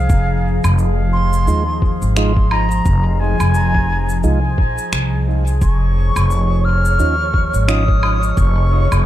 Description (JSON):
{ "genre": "ambient dub", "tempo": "87 BPM", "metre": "4/4", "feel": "swing 58% on 16ths", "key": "F minor", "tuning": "A4 = 442 Hz", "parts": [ { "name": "mellow silver concert flute", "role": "melody", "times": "0.0-9.1 s", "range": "F5 to F6", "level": "-22 LUFS", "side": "left 1 dB", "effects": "dub echo" }, { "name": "warbly tape-like pad", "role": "sustained chords", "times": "0.0-9.1 s", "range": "F3 to Eb5", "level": "-24 LUFS", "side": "equal", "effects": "chorus, built-in reverb" }, { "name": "upright bass", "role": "bass", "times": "0.0-9.1 s", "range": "F1 to Eb2", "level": "-16 LUFS", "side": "equal", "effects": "tube saturation" }, { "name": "electronic kick drum", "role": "drums", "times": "0.1-8.5 s", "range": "none", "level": "-16 LUFS", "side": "equal", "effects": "none" }, { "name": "electronic shaker, woodblock and finger snaps", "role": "drums", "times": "0.1-9.0 s", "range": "none", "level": "-25 LUFS", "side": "right 1 dB", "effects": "overdrive" }, { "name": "tonewheel organ", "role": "stabs", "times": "1.5-7.8 s", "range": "Ab3 to F4", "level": "-26 LUFS", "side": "right 5 dB", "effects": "slow rotary speaker, vintage 12-bit sampler grit, dub echo" }, { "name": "wind-like tuned noise texture", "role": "texture", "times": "6.0-9.1 s", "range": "Db5", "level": "-27 LUFS", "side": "right 6 dB", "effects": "built-in reverb" } ], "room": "light reverb", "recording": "none", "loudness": "-13 LUFS", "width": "side -13 dB against mid", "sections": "0.0-9.1 A section", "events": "none", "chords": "0.0 Fm7; 5.6 Dbadd9/F" }